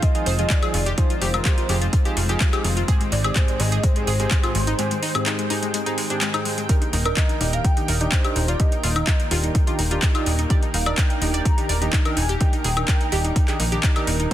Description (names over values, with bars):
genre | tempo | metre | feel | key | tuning
progressive house | 126 BPM | 4/4 | straight | Eb major | A4 = 441 Hz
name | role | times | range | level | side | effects
warm velvety synth lead | melody | 0.0-13.8 s | C5 to Bb5 | -31 LUFS | equal | chorus, sidechain pumping, digital delay
lush unison pad | sustained chords | 0.0-14.3 s | Eb3 to G5 | -31 LUFS | equal | chorus, sidechain pumping
analog pluck | arpeggios | 0.0-14.3 s | Ab3 to D5 | -29 LUFS | left 2 dB | chorus, sidechain pumping, digital delay
deep mellow chord stab | stabs | 0.0-14.3 s | Ab2 to Bb4 | -28 LUFS | right 2 dB | chorus, sidechain pumping, digital delay
deep house drum kit | drums | 0.0-14.3 s | handclaps, hi-hat, woodblock | -26 LUFS | left 1 dB | overdrive, sidechain pumping on hats, sidechain pumping on perc
electronic kick drum | drums | 0.0-14.3 s | none | -20 LUFS | equal | overdrive
plucky analog bass | bass | 0.3-14.3 s | Eb1 to Bb1 | -23 LUFS | equal | sidechain pumping
room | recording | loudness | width
light reverb, digital ambience | dense, heavily limited modern master | -18 LUFS | side -12 dB against mid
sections
0.0-14.3 A section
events
break 4.8-6.7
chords
0.0 Fm7; 2.9 Abmaj7; 6.7 Ebmaj7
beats
0.03 0.50 | 0.98 1.45 1.93 2.41 | 2.88 3.36 3.83 4.31 | 4.79 5.26 5.74 6.22 | 6.69 7.17 7.64 8.12 | 8.60 9.07 9.55 10.03 | 10.50 10.98 11.45 11.93 | 12.41 12.88 13.36 13.84 | 14.31